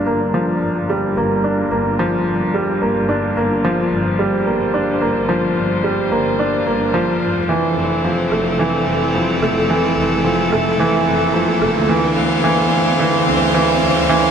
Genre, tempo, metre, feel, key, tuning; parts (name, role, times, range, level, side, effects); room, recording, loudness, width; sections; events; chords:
piano and strings electronica; 109 BPM; 4/4; straight; G dorian; A4 = 439 Hz
clear string quartet; sustained chords; 0.0-14.3 s; D3 to F5; -21 LUFS; left 2 dB; low-pass filter
warm upright piano; riff; 0.0-14.3 s; E3 to D4; -16 LUFS; right 1 dB; tape echo
riser; sound effects; 5.9-14.3 s; -26 LUFS; equal
rich chamber double bass section; bass; 0.1-14.2 s; F1 to G2; -26 LUFS; left 1 dB; tube saturation
wet huge ambient reverb, RT60 4.0 s; -14 LUFS; side -7 dB against mid
0.0-14.3 A section
build-up 0.0-14.3; filter sweep on string quartet 0.0-14.3; riser 5.9-14.3
0.0 Gm7; 7.5 Fmaj7; 11.9 Dm7